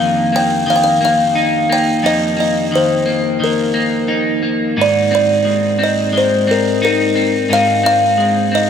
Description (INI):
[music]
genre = dream pop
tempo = 88 BPM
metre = 4/4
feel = straight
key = unclear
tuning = A4 = 439 Hz
[part]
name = buzzing kalimba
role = melody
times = 0.0-8.7 s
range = Bb4 to G5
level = -14 LUFS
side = left 1 dB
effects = digital delay
[part]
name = electric guitar at the edge of break-up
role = arpeggios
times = 0.0-8.7 s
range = F2 to Eb4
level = -16 LUFS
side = equal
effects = lush chorus, digital delay
[sound]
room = moderate huge ambient reverb, RT60 8.3 s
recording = none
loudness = -12 LUFS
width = side -8 dB against mid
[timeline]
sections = 0.0-8.7 A section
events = none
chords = 0.0 F7sus4; 4.8 Ab